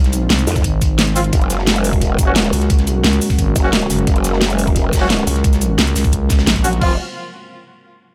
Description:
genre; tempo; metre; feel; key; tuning
dark technical drum and bass; 175 BPM; 4/4; straight; unclear; A4 = 440 Hz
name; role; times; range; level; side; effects
dark analog pad; sustained chords; 0.0-7.0 s; Ab3 to C5; -25 LUFS; equal; chorus, vintage 12-bit sampler grit, sidechain pumping
growling FM bass; bass; 0.0-6.8 s; Gb1 to Db2; -20 LUFS; equal; none
cloth-damped thuddy drum kit; drums; 0.0-6.7 s; hi-hat, snare drum; -32 LUFS; equal; high-pass filter on hats, high-pass filter on snare, high-pass filter on room
dubstep drum kit; drums; 0.0-6.9 s; crash cymbal, hi-hat, shaker, snare drum; -20 LUFS; equal; none
growl bass; bass; 0.5-7.0 s; F1 to F2; -21 LUFS; equal; chorus, tube saturation, sidechain pumping
electronic kick drum; drums; 0.6-6.9 s; none; -18 LUFS; equal; none
clear brass ensemble; stabs; 1.2-6.9 s; F3 to Gb4; -26 LUFS; equal; digital delay
room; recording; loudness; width
light reverb, studio ambience; none; -15 LUFS; mono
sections
0.0-6.8 A section; 6.8-8.1 B section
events
drop 0.0-6.8; band accent 6.5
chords
0.0 Fm; 1.3 Gbadd9; 6.8 Fm

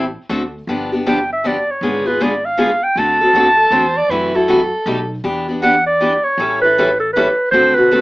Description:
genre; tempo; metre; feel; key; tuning
acoustic string swing (jazz manouche); 158 BPM; 3/4; swing 62% on 8ths; D mixolydian; A4 = 440 Hz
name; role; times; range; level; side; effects
picked steel-string acoustic guitar; accompaniment; 0.0-8.0 s; B2 to A4; -17 LUFS; left 1 dB; none
upright bass; bass; 0.0-8.0 s; G1 to F#2; -31 LUFS; equal; none
breathy clarinet; melody; 1.1-8.0 s; A4 to A5; -14 LUFS; right 1 dB; none
growling soprano saxophone; second line; 3.3-5.1 s; F#4 to D5; -19 LUFS; right 2 dB; none
room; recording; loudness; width
moderate studio reverb, RT60 0.5 s; AM radio sound; -13 LUFS; side -20 dB against mid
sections
0.0-8.0 A section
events
none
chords
0.3 D7; 0.7 G7; 1.8 G#dim7; 3.0 D7; 4.1 F#m7b5; 4.9 Baug7; 5.2 Em7; 6.4 A7

